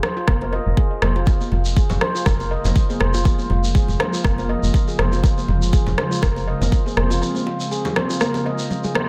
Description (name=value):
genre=afro house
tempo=121 BPM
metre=4/4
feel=swing 55% on 16ths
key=unclear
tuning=A4 = 440 Hz
part: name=handpan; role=arpeggios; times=0.0-9.1 s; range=F4 to Eb5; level=-28 LUFS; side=equal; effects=sidechain pumping, dub echo
part: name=afro-pop drum kit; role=drums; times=0.0-9.1 s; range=rim click, toms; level=-27 LUFS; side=equal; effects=analog delay
part: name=congas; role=percussion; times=0.0-9.1 s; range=none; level=-31 LUFS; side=equal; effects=analog delay
part: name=woody FM bass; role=bass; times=0.3-7.2 s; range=F1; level=-23 LUFS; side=equal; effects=sidechain pumping
part: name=electronic kick drum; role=drums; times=0.3-6.8 s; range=none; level=-20 LUFS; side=equal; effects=none
part: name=ethereal airy pad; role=sustained chords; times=2.2-9.1 s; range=Db3 to F4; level=-30 LUFS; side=equal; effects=ensemble chorus, built-in reverb, sidechain pumping
part: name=shekere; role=percussion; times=1.3-8.9 s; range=none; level=-35 LUFS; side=equal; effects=analog delay
room=light reverb, small room ambience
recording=echo-heavy mix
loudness=-20 LUFS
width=mono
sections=0.0-9.1 A section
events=drum fill 8.7-9.1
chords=0.0 F5; 1.3 Bbm7/F